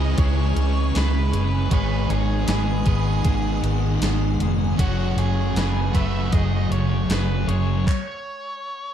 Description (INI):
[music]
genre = rock, shoegaze and dream pop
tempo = 78 BPM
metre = 4/4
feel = straight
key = unclear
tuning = A4 = 440 Hz
[part]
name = octave-fuzz lead guitar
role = melody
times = 0.0-8.9 s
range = F#4 to E5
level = -31 LUFS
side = right 2 dB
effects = distortion, slapback echo
[part]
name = icy glass pad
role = sustained chords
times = 0.0-7.8 s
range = A3 to D#6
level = -35 LUFS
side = right 1 dB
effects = chorus, built-in reverb
[part]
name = electric guitar through a small old amp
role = arpeggios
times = 0.0-7.9 s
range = G#4 to C#5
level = -36 LUFS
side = left 2 dB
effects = analog chorus, slapback echo
[part]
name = overdriven electric guitar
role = riff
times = 0.0-7.9 s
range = F#2 to G#4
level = -28 LUFS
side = right 12 dB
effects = reverse reverb
[part]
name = thick fuzz guitar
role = riff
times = 0.0-7.9 s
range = F#2 to C#4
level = -26 LUFS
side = left 10 dB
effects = distortion, wide subtle chorus
[part]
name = vintage muted fingered electric bass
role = bass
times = 0.0-7.8 s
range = E#1 to C#2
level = -22 LUFS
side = equal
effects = none
[part]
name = gated 80s digital drum machine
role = drums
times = 0.2-8.1 s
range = handclaps, hi-hat, kick drum, snare drum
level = -24 LUFS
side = equal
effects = gated reverb, gated reverb snare, overdrive
[sound]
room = light reverb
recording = dark, warm production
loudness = -19 LUFS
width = side -9 dB against mid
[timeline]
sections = 0.0-8.9 A section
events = stop 7.9-8.9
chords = 0.0 C#m7; 1.7 G#m7; 4.8 F#madd9; 7.9 N.C.